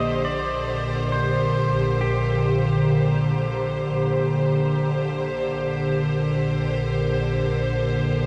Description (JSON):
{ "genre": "ambient", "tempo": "68 BPM", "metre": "4/4", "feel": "straight", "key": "Bb major", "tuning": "A4 = 444 Hz", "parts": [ { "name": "pedal steel guitar", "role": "melody", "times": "0.0-3.3 s", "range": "G4 to Eb5", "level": "-32 LUFS", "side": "equal", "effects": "diffuse ambient delay" }, { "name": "evolving wavetable pad", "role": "sustained chords", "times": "0.0-8.3 s", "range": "D3 to C5", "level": "-25 LUFS", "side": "equal", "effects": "ensemble chorus, built-in reverb" }, { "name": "warm studio double bass section", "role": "bass", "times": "0.0-8.3 s", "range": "Bb1", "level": "-29 LUFS", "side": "equal", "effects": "none" }, { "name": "overtone-sweeping drone", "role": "drone", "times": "0.0-8.3 s", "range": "Bb3 to Bb4", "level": "-36 LUFS", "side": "equal", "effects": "chorus, built-in reverb" }, { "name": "wind-like tuned noise texture", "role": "texture", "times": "0.0-5.6 s", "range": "C6", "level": "-41 LUFS", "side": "equal", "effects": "none" } ], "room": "wet cathedral reverb, RT60 5.9 s", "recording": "in a vast, echoing space", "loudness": "-23 LUFS", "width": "mono", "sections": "0.0-5.5 A section; 5.5-8.3 B section", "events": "none", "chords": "0.0 Bb69", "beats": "0.24 1.13 | 2.01 2.89 3.77 4.66 | 5.54 6.42 7.30 8.19" }